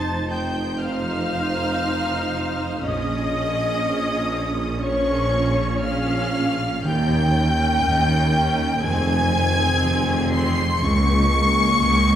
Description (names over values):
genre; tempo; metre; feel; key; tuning
classical; 60 BPM; 4/4; rubato; unclear; A4 = 440 Hz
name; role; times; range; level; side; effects
warm studio violin section; melody; 0.0-12.2 s; Db6 to Db7; -28 LUFS; left 1 dB; none
flute section; second line; 0.0-12.2 s; Db5 to Db6; -26 LUFS; left 1 dB; none
rich studio violin section; second line; 0.0-12.2 s; Db5 to Db6; -28 LUFS; left 2 dB; none
warm studio viola section; accompaniment; 0.0-12.2 s; Bb3 to C5; -29 LUFS; right 1 dB; none
warm French horn section; sustained chords; 0.0-12.2 s; Eb3 to Eb4; -29 LUFS; left 1 dB; none
dark tuba; bass; 0.0-12.2 s; F1 to Eb2; -27 LUFS; right 2 dB; none
rich symphonic cello section; bass; 0.0-12.2 s; Db2 to Bb2; -27 LUFS; right 1 dB; none
warm studio double bass section; bass; 0.0-12.2 s; F1 to Eb2; -26 LUFS; right 1 dB; none
timpani; percussion; 6.8-8.3 s; Eb3; -29 LUFS; left 1 dB; none
room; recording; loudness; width
wet recital hall reverb, RT60 1.5 s; recorded in a church or concert hall; -18 LUFS; side -10 dB against mid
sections
0.0-12.2 A section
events
none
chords
0.0 F7; 2.8 Bbm7; 6.8 Eb7; 8.8 Fm7; 10.8 Bbm7/Db